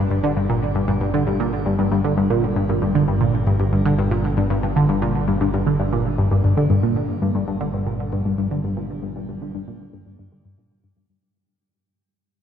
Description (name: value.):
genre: ambient, sequencer-driven space music.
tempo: 116 BPM.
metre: 4/4.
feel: straight.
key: G minor.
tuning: A4 = 442 Hz.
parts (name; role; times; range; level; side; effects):
tight sequenced synth; riff; 0.0-11.2 s; G2 to D3; -19 LUFS; equal; chorus, phaser, tape echo, shimmer reverb.
analog drone; bass; 0.0-11.2 s; G1; -27 LUFS; equal; chorus.
room: wet cathedral reverb, RT60 5.5 s.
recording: in a vast, echoing space.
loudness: -18 LUFS.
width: side -8 dB against mid.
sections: 0.0-7.1 A section; 7.1-11.2 B section.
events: fade-out on synth drone 7.1-11.2; fade-out 7.1-11.2; filter sweep on synth arpeggio sound 7.1-11.2.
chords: 0.0 Gm.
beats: 0.36 | 0.88 1.40 1.92 2.43 | 2.95 3.47 3.98 4.50 | 5.02 5.54 6.05 6.57 | 7.09 7.61 8.12 8.64 | 9.16 9.67 10.19 10.71.